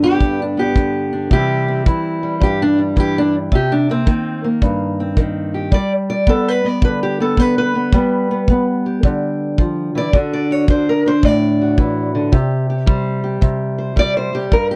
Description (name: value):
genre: acoustic country blues, solo or duo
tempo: 109 BPM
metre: 4/4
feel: swing 67% on 8ths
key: G major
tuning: A4 = 440 Hz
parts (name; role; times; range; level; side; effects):
- fingerpicked steel-string acoustic guitar; melody; 0.0-14.8 s; G2 to D5; -18 LUFS; equal; none
- kick drum; drums; 0.2-14.7 s; none; -17 LUFS; equal; none
room: little or no reverb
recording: dry, close 1970s-style studio recording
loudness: -17 LUFS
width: mono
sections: 0.0-14.8 A section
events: steel-string acoustic guitar solo 0.0-14.8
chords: 0.0 G; 1.3 C; 3.5 Cm7; 5.7 G; 10.1 D; 12.3 C5